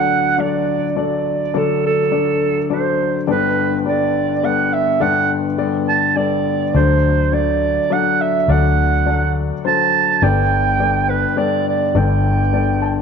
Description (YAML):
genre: acoustic folk-pop ballad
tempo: 104 BPM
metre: 3/4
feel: straight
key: G major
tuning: A4 = 440 Hz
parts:
  - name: breathy clarinet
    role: melody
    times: 0.0-13.0 s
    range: A4 to A5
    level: -18 LUFS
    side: right 8 dB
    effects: none
  - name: warm grand piano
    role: accompaniment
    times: 0.0-13.0 s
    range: G1 to A5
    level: -19 LUFS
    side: left 9 dB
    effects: none
  - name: vintage muted fingered electric bass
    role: bass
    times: 6.7-13.0 s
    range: G1 to D2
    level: -17 LUFS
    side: equal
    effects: none
room: moderate echo chamber reverb, RT60 1.9 s, studio ambience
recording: 1960s-style stereo with parts hard left and right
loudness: -14 LUFS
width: side -6 dB against mid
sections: 0.0-13.0 A section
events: none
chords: 0.0 D; 3.3 Gadd9; 6.7 D; 10.2 Gadd9